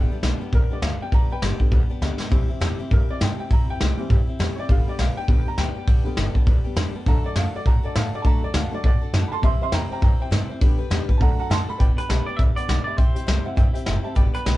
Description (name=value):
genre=rockabilly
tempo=203 BPM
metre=4/4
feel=swing 60% on 8ths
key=G major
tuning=A4 = 440 Hz
part: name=clear upright piano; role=accompaniment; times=0.0-14.6 s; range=D3 to C6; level=-31 LUFS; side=equal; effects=none
part: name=picked steel-string acoustic guitar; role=accompaniment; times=0.0-14.6 s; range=G2 to C5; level=-32 LUFS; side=left 3 dB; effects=none
part: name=upright bass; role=bass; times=0.0-14.6 s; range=F#1 to A2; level=-25 LUFS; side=equal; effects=none
part: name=vintage brush drum kit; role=drums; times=0.2-14.5 s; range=hi-hat, kick drum, snare drum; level=-20 LUFS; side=equal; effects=none
part: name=twangy electric guitar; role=melody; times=12.0-14.6 s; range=B4 to E5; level=-29 LUFS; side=right 3 dB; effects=none
room=light reverb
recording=band playing live in one room, nothing above 10.8 kHz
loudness=-19 LUFS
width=side -17 dB against mid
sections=0.0-11.8 A section; 11.8-14.6 B section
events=upright piano solo 0.0-11.8; drum fill 2.0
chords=0.0 G; 2.3 C; 4.7 G; 7.1 D; 9.4 C; 10.6 G; 11.2 D; 11.8 G; 13.0 C